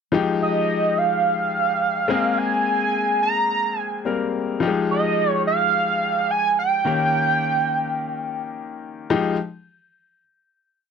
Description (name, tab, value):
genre	R&B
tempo	107 BPM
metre	4/4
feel	swing 66% on 16ths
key	F minor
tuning	A4 = 439 Hz
part	clear concert grand piano	accompaniment	0.1-9.4 s	Eb3 to Bb4	-23 LUFS	left 5 dB	none
part	octave-doubled lead	melody	0.4-8.5 s	Eb5 to Bb5	-20 LUFS	right 3 dB	chorus, phaser, slapback echo
room	moderate booth ambience, RT60 0.3 s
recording	dry, close 1970s-style studio recording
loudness	-19 LUFS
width	side -6 dB against mid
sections	0.1-9.1 verse; 9.1-10.9 final chord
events	none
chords	0.1 Fm9; 2.1 Abmaj9; 4.6 Fm9; 6.9 Eb7; 9.1 Fm9